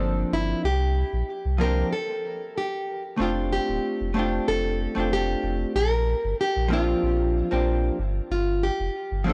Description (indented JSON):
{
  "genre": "sunset chillout",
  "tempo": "94 BPM",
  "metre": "4/4",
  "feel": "swing 54% on 16ths",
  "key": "F major",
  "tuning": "A4 = 439 Hz",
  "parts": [
    { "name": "nylon-string guitar", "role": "melody", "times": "0.0-9.3 s", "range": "D4 to Bb4", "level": "-29 LUFS", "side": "equal", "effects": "tape echo" },
    { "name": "vintage hollow-body jazz guitar", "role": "accompaniment", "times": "0.0-9.3 s", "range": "F3 to A4", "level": "-30 LUFS", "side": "equal", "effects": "vintage 12-bit sampler grit, analog delay" },
    { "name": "warm sub bass", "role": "bass", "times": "0.0-9.3 s", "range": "D1 to C2", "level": "-28 LUFS", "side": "equal", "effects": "none" }
  ],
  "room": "light reverb, small room ambience",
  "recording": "dry, gritty hardware recording, transformer saturation, cassette tape",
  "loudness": "-25 LUFS",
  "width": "mono",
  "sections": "0.0-3.2 A section; 3.2-9.3 B section",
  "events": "break 1.9-3.2",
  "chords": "0.0 Gm11; 0.6 C9sus4; 3.2 F69; 5.8 Bb69; 8.0 G7(no3)",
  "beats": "0.01 | 0.65 1.29 1.92 2.56 | 3.20 3.84 4.48 5.12 | 5.75 6.39 7.03 7.67 | 8.31 8.95"
}